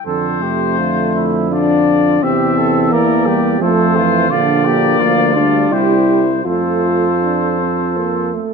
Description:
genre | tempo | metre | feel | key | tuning
classical, brass quintet | 84 BPM | 3/4 | uneven beats, rubato | F major | A4 = 441 Hz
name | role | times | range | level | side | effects
clear trumpet | melody | 0.0-8.3 s | C5 to E5 | -20 LUFS | left 9 dB | none
warm flugelhorn | second line | 0.1-8.3 s | E4 to Bb4 | -20 LUFS | right 9 dB | none
warm euphonium | accompaniment | 0.1-8.5 s | C3 to D4 | -22 LUFS | right 5 dB | none
clear tuba | bass | 0.1-8.3 s | Bb1 to F2 | -19 LUFS | right 5 dB | none
warm French horn | accompaniment | 0.4-8.3 s | A3 to F4 | -17 LUFS | left 4 dB | none
room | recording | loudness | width
moderate concert hall reverb, RT60 2.0 s | none | -12 LUFS | side -5 dB against mid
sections
0.0-8.5 A section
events
none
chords
0.1 F; 2.2 C7/E; 3.6 F; 4.3 Bb; 5.7 C; 6.5 F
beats
| 0.06 0.78 1.52 | 2.22 2.92 3.61 | 4.30 5.01 5.72 | 6.46 7.21 7.96

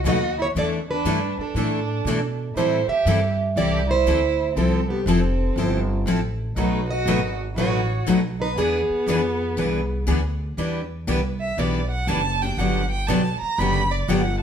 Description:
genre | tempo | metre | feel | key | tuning
acoustic string swing (jazz manouche) | 120 BPM | 4/4 | swing 65% on 8ths | E minor from 10.6 s | A4 = 439 Hz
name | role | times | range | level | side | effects
picked plugged-in steel-string acoustic guitar | melody | 0.0-10.0 s | G4 to E5 | -25 LUFS | right 3 dB | none
warm violin | second line | 0.0-14.4 s | B3 to B5 | -27 LUFS | right 3 dB | none
upright bass | bass | 0.0-14.4 s | F1 to B2 | -25 LUFS | equal | none
picked steel-string acoustic guitar | accompaniment | 0.1-14.2 s | B2 to A4 | -24 LUFS | left 4 dB | none
picked steel-string acoustic guitar | accompaniment | 0.1-14.2 s | B2 to B4 | -30 LUFS | right 5 dB | none
room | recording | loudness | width
moderate large studio reverb, RT60 1.0 s | band playing live in one room | -20 LUFS | side -8 dB against mid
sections
0.0-10.6 A section; 10.6-14.4 B section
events
violin solo 10.6-14.4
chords
0.0 B7; 0.6 E7sus4; 2.6 Am7; 4.6 Fmaj7; 6.6 B7; 8.6 E7b9b13; 10.6 Em7; 12.6 Gmaj7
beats
0.06 | 0.56 1.06 1.56 2.06 | 2.56 3.06 3.56 4.07 | 4.57 5.07 5.57 6.07 | 6.57 7.07 7.57 8.07 | 8.57 9.07 9.57 10.07 | 10.57 11.07 11.57 12.08 | 12.58 13.08 13.58 14.08

